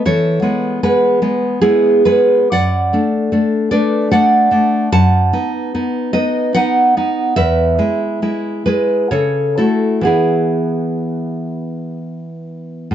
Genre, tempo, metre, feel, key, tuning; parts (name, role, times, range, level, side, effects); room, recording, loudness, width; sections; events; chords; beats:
romantic piece for solo classical guitar; 60-78 BPM; 3/4; rubato; A4 = 440 Hz
nylon-string guitar; solo; 0.0-12.9 s; E2 to A5; -13 LUFS; equal
moderate small room reverb, RT60 0.5 s; dark, warm production, nothing above 7.7 kHz; -13 LUFS; side -10 dB against mid
0.0-12.9 A section
0.0 E; 2.5 D/F#; 4.9 B7/F#; 7.4 E; 9.1 A/C#; 10.1 E
| 0.05 0.82 1.62 | 2.51 3.33 4.13 | 4.93 5.73 6.54 | 7.36 8.22 9.13 | 10.06 11.05 12.03